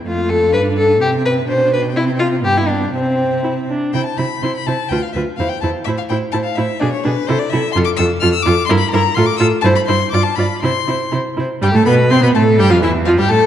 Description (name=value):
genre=quick classical-period movement for string quartet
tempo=126 BPM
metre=2/4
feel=rubato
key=C major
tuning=A4 = 439 Hz
part: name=clear violin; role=melody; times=0.1-13.5 s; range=B4 to F6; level=-22 LUFS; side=left 8 dB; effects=none
part: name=rich violin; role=second line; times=0.1-13.5 s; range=C4 to D5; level=-18 LUFS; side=left 2 dB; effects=none
part: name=warm viola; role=accompaniment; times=0.1-13.4 s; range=E3 to F4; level=-19 LUFS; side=right 1 dB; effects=none
part: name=rich cello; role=bass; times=0.1-13.4 s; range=D2 to C3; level=-18 LUFS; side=right 3 dB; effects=none
room=wet concert hall reverb, RT60 1.8 s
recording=dark, warm production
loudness=-13 LUFS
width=side -10 dB against mid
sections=0.0-3.9 A section; 3.9-11.6 B section; 11.6-13.5 B section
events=none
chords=0.1 F; 0.5 G7(no3); 1.0 C; 1.5 G/B; 2.0 C5; 2.4 G7; 2.9 C; 4.9 Bdim/D (rootless); 5.4 C/E; 5.9 Am; 6.8 G#dim/B; 7.3 Am/C; 7.8 F; 8.7 Edim/G; 9.2 F/A; 9.6 C; 10.1 G7; 10.6 C; 11.6 C5; 12.6 Em